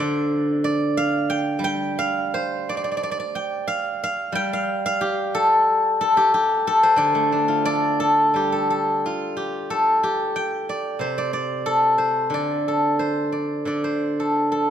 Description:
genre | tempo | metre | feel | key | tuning
chinese traditional, Chinese solo plucked strings | 90 BPM | 2/4 | rubato | D yu mode | A4 = 440 Hz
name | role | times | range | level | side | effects
steel-string zither | solo | 0.0-14.7 s | C3 to G5 | -19 LUFS | equal | none
room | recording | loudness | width
light reverb | none | -19 LUFS | side -9 dB against mid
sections
0.0-8.4 A section; 8.4-14.7 B section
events
none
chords
none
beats
| 0.28 0.94 | 1.61 2.30 | 2.98 3.66 | 4.34 5.00 | 5.67 6.32 | 6.99 7.66 | 8.35 9.04 | 9.71 10.37 | 11.01 11.66 | 12.32 12.99 | 13.66 14.34

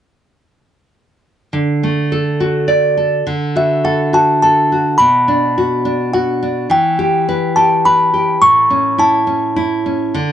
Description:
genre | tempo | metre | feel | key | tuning
children's music, lullaby | 105 BPM | 3/4 | straight | D major | A4 = 440 Hz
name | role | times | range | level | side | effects
nylon-string guitar | accompaniment | 1.5-10.3 s | A2 to D5 | -16 LUFS | right 1 dB | none
music box | melody | 3.6-9.8 s | E5 to C#6 | -13 LUFS | equal | none
room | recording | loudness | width
wet booth ambience, RT60 0.2 s | dark, warm production, nothing above 10.7 kHz | -12 LUFS | side -10 dB against mid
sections
1.5-3.3 A section; 3.3-10.3 B section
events
none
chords
1.5 D; 5.0 Bm; 6.7 Em; 8.4 A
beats
| 1.54 2.12 2.69 | 3.27 3.85 4.43 | 5.00 5.57 6.14 | 6.71 7.28 7.84 | 8.41 8.99 9.57 | 10.15

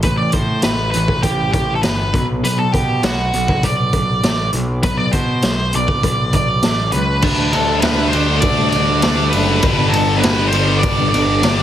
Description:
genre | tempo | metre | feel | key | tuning
quiet-loud alternative rock | 100 BPM | 4/4 | straight | unclear | A4 = 440 Hz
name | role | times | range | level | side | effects
octave-fuzz lead guitar | melody | 0.0-11.6 s | F#4 to D5 | -19 LUFS | right 1 dB | distortion
electric guitar through a small old amp | arpeggios | 0.0-11.6 s | G2 to D4 | -23 LUFS | equal | tremolo, tape echo
overdriven picked electric bass | bass | 0.0-11.6 s | F#1 to B2 | -20 LUFS | equal | none
raw garage drum kit | drums | 0.0-11.6 s | crash cymbal, hi-hat, kick drum, ride cymbal, snare drum | -19 LUFS | equal | none
heavy high-gain guitar | riff | 7.2-11.6 s | G2 to D4 | -20 LUFS | equal | distortion
room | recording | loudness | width
light reverb, small room reverb | heavily compressed radio sound | -14 LUFS | side -11 dB against mid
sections
0.0-7.2 A section; 7.2-11.6 B section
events
none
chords
0.0 A5; 2.1 Bm; 7.2 Dsus4; 9.6 G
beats
| 0.04 0.64 1.24 1.84 | 2.44 3.03 3.63 4.23 | 4.83 5.43 6.03 6.63 | 7.23 7.83 8.44 9.04 | 9.64 10.24 10.84 11.45

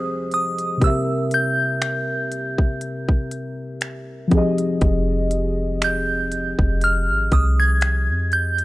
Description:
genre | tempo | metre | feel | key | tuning
contemporary R&B | 60 BPM | 4/4 | swing 54% on 16ths | F minor | A4 = 440 Hz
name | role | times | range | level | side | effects
glassy synth bell | melody | 0.0-8.6 s | Eb6 to Ab6 | -22 LUFS | right 1 dB | chorus, tremolo
muted felt-like synth keys | accompaniment | 0.0-8.6 s | C3 to E5 | -24 LUFS | left 1 dB | chorus
trap drum kit | drums | 0.3-8.6 s | finger snaps, hi-hat, kick drum | -20 LUFS | equal | none
soft 808-style bass | bass | 4.8-8.6 s | F1 to F2 | -21 LUFS | equal | none
room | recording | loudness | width
little or no reverb | dry, gritty hardware recording | -18 LUFS | side -18 dB against mid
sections
0.0-8.6 A section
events
none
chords
0.0 Fm7; 0.8 C7; 4.3 Fm7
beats
| 0.82 1.82 2.82 3.82 | 4.82 5.82 6.82 7.82

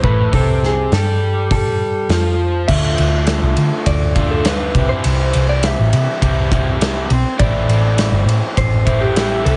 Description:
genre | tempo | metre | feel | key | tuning
indie rock | 102 BPM | 4/4 | straight | unclear | A4 = 439 Hz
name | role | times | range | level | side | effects
electric guitar through a small old amp | melody | 0.0-9.6 s | G4 to E5 | -24 LUFS | equal | analog delay
raw garage guitar | riff | 0.0-9.6 s | A2 to G4 | -23 LUFS | equal | overdrive, analog delay
picked electric bass | bass | 0.0-9.6 s | G1 to D3 | -19 LUFS | equal | none
loose indie drum kit | drums | 0.0-9.6 s | crash cymbal, hi-hat, kick drum, ride cymbal, snare drum | -22 LUFS | equal | none
room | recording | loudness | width
studio ambience | echo-heavy mix, nothing above 10.3 kHz | -16 LUFS | mono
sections
0.0-2.7 A section; 2.7-9.6 B section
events
none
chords
0.0 Am; 2.7 Dmadd9; 4.7 C; 7.4 Am7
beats
| 0.33 0.92 1.51 2.10 | 2.69 3.27 3.86 4.45 | 5.04 5.63 6.22 6.81 | 7.40 7.99 8.58 9.17

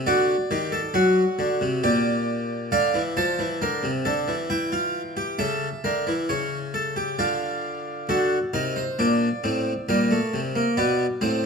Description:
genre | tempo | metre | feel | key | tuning
classical, baroque-style 3-part fugue for harpsichord | 67 BPM | 3/4 | straight | unclear | A4 = 442 Hz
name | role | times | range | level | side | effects
harpsichord | solo | 0.0-11.5 s | A2 to A5 | -21 LUFS | equal | none
room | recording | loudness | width
moderate recital hall reverb, RT60 1.7 s | close, detailed microphones | -22 LUFS | side -5 dB against mid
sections
0.0-8.1 A section; 8.1-11.5 B section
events
none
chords
0.1 D7; 1.8 Gm/Bb; 2.7 Dm; 4.5 Em; 5.4 A7/C#; 7.2 Dm; 8.1 D7; 9.9 Gm/Bb; 10.8 E7(no3) (rootless)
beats
| 0.07 0.95 1.84 | 2.73 3.62 4.51 | 5.40 6.30 7.20 | 8.09 8.99 9.88 | 10.77

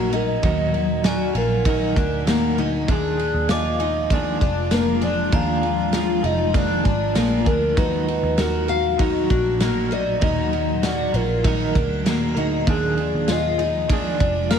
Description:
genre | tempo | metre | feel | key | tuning
dream pop | 98 BPM | 4/4 | straight | Eb harmonic minor | A4 = 441 Hz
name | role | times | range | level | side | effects
warbly nostalgic lead | melody | 0.0-14.6 s | Gb4 to F5 | -25 LUFS | left 2 dB | chorus, tape echo
semi-hollow electric guitar | accompaniment | 0.0-14.6 s | Eb3 to Bb4 | -28 LUFS | right 7 dB | tremolo, lush chorus
granular cloud pad | sustained chords | 0.0-14.6 s | Bb2 to Ab4 | -27 LUFS | equal | built-in reverb
picked twelve-string acoustic guitar | arpeggios | 0.0-14.6 s | Bb3 to F5 | -25 LUFS | left 3 dB | wide subtle chorus, tape echo
vintage muted picked electric bass | bass | 0.0-14.6 s | F1 to Eb2 | -26 LUFS | equal | none
loose indie drum kit | drums | 0.1-14.6 s | kick drum, ride cymbal, snare drum, tambourine | -25 LUFS | equal | none
glockenspiel with brass mallets | texture | 1.1-8.5, 14.5-14.6 s | Ab5 to F6 | -35 LUFS | right 2 dB | tape echo
room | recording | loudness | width
light reverb, studio reverb | tape saturation | -18 LUFS | side -7 dB against mid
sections
0.0-14.6 A section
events
none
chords
0.0 Ebm; 2.9 Bb7; 7.8 Ebm; 12.7 Bb7/Eb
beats
| 0.43 1.04 1.65 2.26 | 2.88 3.49 4.10 4.71 | 5.33 5.94 6.55 7.16 | 7.78 8.39 9.00 9.61 | 10.22 10.84 11.45 12.06 | 12.67 13.29 13.90 14.51

